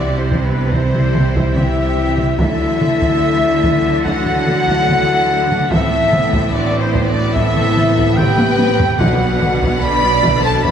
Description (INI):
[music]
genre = cinematic, epic orchestral film score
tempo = 72 BPM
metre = 4/4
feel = straight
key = unclear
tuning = A4 = 439 Hz
[part]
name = warm symphonic violin section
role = melody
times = 0.0-10.7 s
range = B4 to B5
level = -24 LUFS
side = left 3 dB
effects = none
[part]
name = mellow flute section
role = second line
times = 0.0-10.7 s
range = B4 to B5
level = -23 LUFS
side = equal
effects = none
[part]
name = rich symphonic violin section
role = second line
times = 0.0-10.7 s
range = D4 to D5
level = -25 LUFS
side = left 5 dB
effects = none
[part]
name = warm symphonic viola section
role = accompaniment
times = 0.0-10.7 s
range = D3 to E4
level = -25 LUFS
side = right 1 dB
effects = none
[part]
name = clear trombone section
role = sustained chords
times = 0.0-10.7 s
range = E3 to D4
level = -25 LUFS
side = right 3 dB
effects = none
[part]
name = dark French horn section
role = sustained chords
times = 0.0-10.7 s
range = B3 to B4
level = -22 LUFS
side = left 6 dB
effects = none
[part]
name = warm trumpet section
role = stabs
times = 0.0-10.7 s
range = B4 to B5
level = -21 LUFS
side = equal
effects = none
[part]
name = bright symphonic cello section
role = bass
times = 0.0-10.7 s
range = A2 to D3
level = -22 LUFS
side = right 3 dB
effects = none
[part]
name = warm symphonic double bass section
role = bass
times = 0.0-10.7 s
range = A1 to D2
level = -22 LUFS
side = right 3 dB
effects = none
[part]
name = taiko ensemble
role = drums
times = 0.3-10.7 s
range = none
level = -19 LUFS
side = equal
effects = none
[part]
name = timpani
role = percussion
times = 9.0-10.2 s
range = B2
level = -24 LUFS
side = equal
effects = none
[sound]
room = wet scoring stage reverb, RT60 1.7 s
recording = none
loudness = -13 LUFS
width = side -8 dB against mid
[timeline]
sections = 0.0-10.7 A section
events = drum fill 8.2-9.0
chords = 0.0 C; 2.4 Dadd9; 5.7 Amadd9; 9.0 Bm